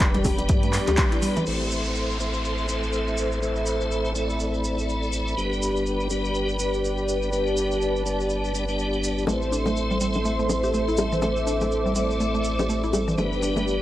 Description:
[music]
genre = afro house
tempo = 123 BPM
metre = 4/4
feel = swing 58% on 16ths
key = A minor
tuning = A4 = 437 Hz
[part]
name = warm analog pad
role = sustained chords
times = 0.0-13.8 s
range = G4 to D6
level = -27 LUFS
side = equal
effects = chorus, sidechain pumping
[part]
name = tonewheel organ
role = stabs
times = 0.0-13.8 s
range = G3 to D5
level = -28 LUFS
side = left 1 dB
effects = overdrive, chorus vibrato, slow rotary speaker, sidechain pumping, analog delay
[part]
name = warm sub bass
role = bass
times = 0.0-13.8 s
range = F1 to G2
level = -29 LUFS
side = equal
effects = sidechain pumping
[part]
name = deep house drum kit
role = drums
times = 0.0-1.6 s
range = crash cymbal, handclaps, hi-hat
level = -28 LUFS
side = equal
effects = overdrive, low-pass filter on hats, low-pass filter on snare, low-pass filter on cymbals
[part]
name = electronic kick drum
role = drums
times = 0.0-1.1 s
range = none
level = -22 LUFS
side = equal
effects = overdrive
[part]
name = cabasa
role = percussion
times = 0.0-13.8 s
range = none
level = -37 LUFS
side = right 2 dB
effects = none
[part]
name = mallet-like synth pluck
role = arpeggios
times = 0.1-1.5, 9.3-13.7 s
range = E3 to G4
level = -29 LUFS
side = right 1 dB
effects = chorus, sidechain pumping, analog delay
[part]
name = bongos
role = percussion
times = 0.1-1.0, 9.3-13.6 s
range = none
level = -29 LUFS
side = left 2 dB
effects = none
[part]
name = congas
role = percussion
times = 0.1-1.4 s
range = none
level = -34 LUFS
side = equal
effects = none
[part]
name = downlifter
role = sound effects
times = 1.5-5.4 s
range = none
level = -35 LUFS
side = equal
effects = none
[sound]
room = light reverb, digital ambience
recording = dry, gritty hardware recording, cassette tape, lossy compression artefacts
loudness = -22 LUFS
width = side -14 dB against mid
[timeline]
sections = 0.0-1.5 A section; 1.5-13.8 B section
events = band accent 1.0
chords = 0.0 G; 1.5 Am; 5.4 G; 9.3 Am; 13.2 G

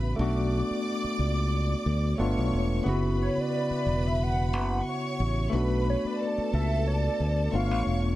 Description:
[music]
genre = lush 1970s-style soul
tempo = 90 BPM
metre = 4/4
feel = swing 54% on 16ths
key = B minor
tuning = A4 = 443 Hz
[part]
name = hollow square lead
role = melody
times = 0.0-8.0 s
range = C#5 to F#5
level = -32 LUFS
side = equal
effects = chorus
[part]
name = clear studio string section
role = second line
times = 0.0-8.2 s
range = A4 to D6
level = -35 LUFS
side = right 1 dB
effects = none
[part]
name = barky tine electric piano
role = accompaniment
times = 0.0-8.2 s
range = C#3 to F#4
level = -30 LUFS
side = left 1 dB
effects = overdrive, fast stereo tremolo
[part]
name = modern bright fingered electric bass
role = bass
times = 0.0-8.1 s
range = E1 to D2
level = -27 LUFS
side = equal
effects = none
[part]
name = vibraphone with medium hard mallets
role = texture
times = 2.2-7.8 s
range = B4 to E5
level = -43 LUFS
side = right 1 dB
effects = none
[sound]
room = small room ambience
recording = dark, warm production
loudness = -25 LUFS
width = side -15 dB against mid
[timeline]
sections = 0.0-8.2 A section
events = none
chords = 0.2 Bm7; 2.2 G9; 2.9 F#7sus4; 5.5 Bm7; 7.5 G9

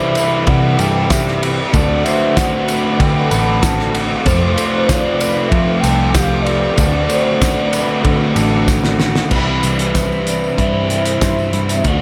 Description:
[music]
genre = rock, shoegaze and dream pop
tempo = 95 BPM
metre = 4/4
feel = straight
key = unclear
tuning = A4 = 441 Hz
[part]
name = pure breathy sine lead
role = melody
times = 0.0-12.0 s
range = B4 to B5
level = -24 LUFS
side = equal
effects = chorus, tape echo
[part]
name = electric guitar through a small old amp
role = arpeggios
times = 0.0-12.0 s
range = C4 to E5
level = -27 LUFS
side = equal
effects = lush chorus, tape echo
[part]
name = crunchy overdriven guitar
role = riff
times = 0.0-12.0 s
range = F2 to F#4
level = -23 LUFS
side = equal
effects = reverse reverb
[part]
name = overdriven electric guitar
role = riff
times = 0.0-12.0 s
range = F2 to F#4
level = -23 LUFS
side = equal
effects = lush chorus
[part]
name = loose indie drum kit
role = drums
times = 0.2-12.0 s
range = crash cymbal, hi-hat, kick drum, ride cymbal, snare drum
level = -20 LUFS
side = equal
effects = none
[part]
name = tambourine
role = percussion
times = 0.2-11.8 s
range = none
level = -32 LUFS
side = equal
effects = none
[part]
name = vintage muted picked electric bass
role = bass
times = 0.5-12.0 s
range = A1 to F3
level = -21 LUFS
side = equal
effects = none
[sound]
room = light reverb, small room ambience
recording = none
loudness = -15 LUFS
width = mono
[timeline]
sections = 0.0-9.3 A section; 9.3-12.0 B section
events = drum fill 8.7-9.3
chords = 0.0 Cmaj7; 1.7 D5; 4.3 F; 6.8 D5; 9.3 Cmaj7

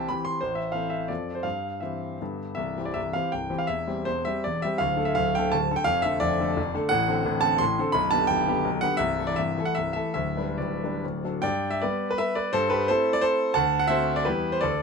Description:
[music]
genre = classical, romantic triple-time dance for piano with dotted rhythms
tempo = 132-191 BPM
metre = 3/4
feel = rubato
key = C major, G major from 6.9 s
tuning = A4 = 440 Hz
[part]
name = clear concert grand piano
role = solo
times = 0.0-14.8 s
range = B0 to C6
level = -23 LUFS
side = equal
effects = none
[sound]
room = light reverb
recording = close, detailed microphones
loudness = -23 LUFS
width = side -5 dB against mid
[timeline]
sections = 0.0-2.6 A section; 2.6-11.4 B section; 11.4-14.8 C section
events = none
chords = 0.4 Am; 1.1 F; 1.4 C/G; 2.2 G; 2.6 C; 3.7 C/E; 4.8 D5; 5.9 Dm/F; 6.9 D7/A; 8.0 G/B; 9.0 Am/C; 10.2 G/D; 11.0 D; 11.4 G; 12.5 Am/G; 13.5 D7; 14.3 Em

